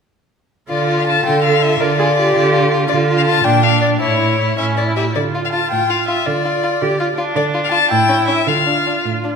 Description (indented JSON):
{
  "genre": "quick classical-period movement for string quartet",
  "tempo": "108 BPM (dotted quarters)",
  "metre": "6/8",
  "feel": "rubato",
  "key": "D minor",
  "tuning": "A4 = 438 Hz",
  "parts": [
    { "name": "warm violin", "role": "melody", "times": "0.7-9.1 s", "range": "C#5 to A5", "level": "-17 LUFS", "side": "left 6 dB", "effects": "none" },
    { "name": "clear violin", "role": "second line", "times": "0.7-9.3 s", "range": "C#4 to F4", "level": "-22 LUFS", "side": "left 2 dB", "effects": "none" },
    { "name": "clear viola", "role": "accompaniment", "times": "0.7-9.3 s", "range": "C#4 to Bb4", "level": "-19 LUFS", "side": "right 3 dB", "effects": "none" },
    { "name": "clear cello", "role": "bass", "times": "0.7-9.4 s", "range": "A2 to D3", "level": "-19 LUFS", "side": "right 4 dB", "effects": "none" }
  ],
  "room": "wet scoring stage reverb, RT60 1.5 s",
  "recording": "minimal, uncompressed stereo recording",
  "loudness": "-13 LUFS",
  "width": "side -6 dB against mid",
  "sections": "0.7-9.4 A section",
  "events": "none",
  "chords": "0.7 Dm; 3.4 Bb; 4.0 A; 5.2 Dm; 7.9 A7; 8.5 Dm"
}